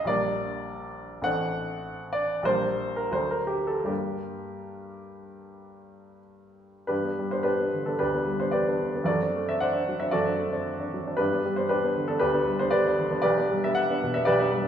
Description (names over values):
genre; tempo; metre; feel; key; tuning
classical, romantic character piece for solo piano; 72-125 BPM; 4/4; rubato; G minor, G major from 6.9 s; A4 = 441 Hz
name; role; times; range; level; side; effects
clear upright piano; solo; 0.0-14.7 s; A1 to F#5; -24 LUFS; equal; none
room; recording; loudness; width
wet recital hall reverb, RT60 1.5 s; recorded in a church or concert hall; -24 LUFS; side -9 dB against mid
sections
0.0-6.9 A section; 6.9-14.7 B section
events
none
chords
0.0 Gm/Bb; 1.3 D7/A; 2.5 Gm/Bb; 3.1 D; 3.9 Gm; 6.9 G; 9.1 D7/F#; 11.2 G; 13.3 G/B